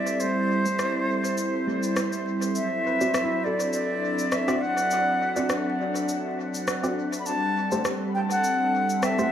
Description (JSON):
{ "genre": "ambient dub", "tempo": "102 BPM", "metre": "4/4", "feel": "swing 55% on 16ths", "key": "A dorian", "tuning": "A4 = 441 Hz", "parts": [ { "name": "bright reedy concert flute", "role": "melody", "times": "0.0-9.3 s", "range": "C5 to B5", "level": "-26 LUFS", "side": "equal", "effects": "dub echo" }, { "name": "warm analog pad", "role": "sustained chords", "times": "0.0-9.3 s", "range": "F#3 to A4", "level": "-28 LUFS", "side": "equal", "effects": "chorus, vintage 12-bit sampler grit" }, { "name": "concert harp", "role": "arpeggios", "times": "0.0-6.4 s", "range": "E4 to B4", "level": "-37 LUFS", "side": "left 2 dB", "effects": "vintage 12-bit sampler grit, low-pass filter, dub echo" }, { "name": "electronic cabasa and rim click", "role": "drums", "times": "0.1-9.3 s", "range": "none", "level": "-32 LUFS", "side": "equal", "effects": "dub echo" }, { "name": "filtered dub chord stab", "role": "stabs", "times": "0.7-9.3 s", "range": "A3 to D5", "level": "-32 LUFS", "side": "right 1 dB", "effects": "chorus, cassette tape, dub echo" } ], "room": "wet scoring stage reverb, RT60 1.6 s, digital ambience", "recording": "vinyl crackle, small room reverb", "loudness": "-23 LUFS", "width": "side -9 dB against mid", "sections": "0.0-9.3 A section", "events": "filter sweep on synth stab 0.0-9.3", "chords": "0.0 Am7; 2.6 D7; 7.3 Am7" }